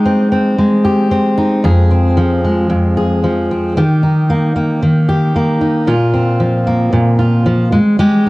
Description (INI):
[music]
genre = pop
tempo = 113 BPM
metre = 4/4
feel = straight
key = Eb major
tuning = A4 = 440 Hz
[part]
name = fingerpicked steel-string acoustic guitar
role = solo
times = 0.0-8.3 s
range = F2 to Ab4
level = -11 LUFS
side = equal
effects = none
[sound]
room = wet booth ambience, RT60 0.2 s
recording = home recording on cassette, lossy compression artefacts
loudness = -11 LUFS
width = side -21 dB against mid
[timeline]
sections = 0.0-8.3 A section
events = none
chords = 0.0 Abmaj7; 1.6 Fm; 3.8 Eb; 5.9 Bbsus2; 7.7 Abmaj7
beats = 0.06 0.59 1.12 | 1.65 2.17 2.71 3.23 | 3.76 4.29 4.82 5.35 | 5.88 6.41 6.94 7.47 | 8.00